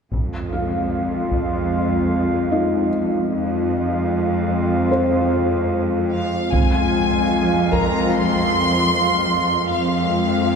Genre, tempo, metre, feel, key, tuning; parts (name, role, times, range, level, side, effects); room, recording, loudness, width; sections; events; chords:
cinematic, hybrid orchestral and electronic film score; 75 BPM; 4/4; straight; F minor; A4 = 440 Hz
hollow soft pad; sustained chords; 0.1-10.6 s; Ab3 to F5; -20 LUFS; left 1 dB; chorus
clear symphonic cello section; bass; 0.1-10.6 s; F2; -24 LUFS; right 3 dB
taiko ensemble; drums; 0.1-1.7, 6.5-8.1 s; -25 LUFS; right 1 dB
felt-muted upright piano; texture; 0.5-10.6 s; Eb4 to F5; -28 LUFS; left 1 dB
rich chamber violin section; melody; 6.1-10.6 s; F5 to C6; -21 LUFS; left 2 dB
wet cathedral reverb, RT60 5.1 s; recorded in a church or concert hall; -17 LUFS; side -6 dB against mid
0.1-6.5 A section; 6.5-10.6 B section
0.1 Fm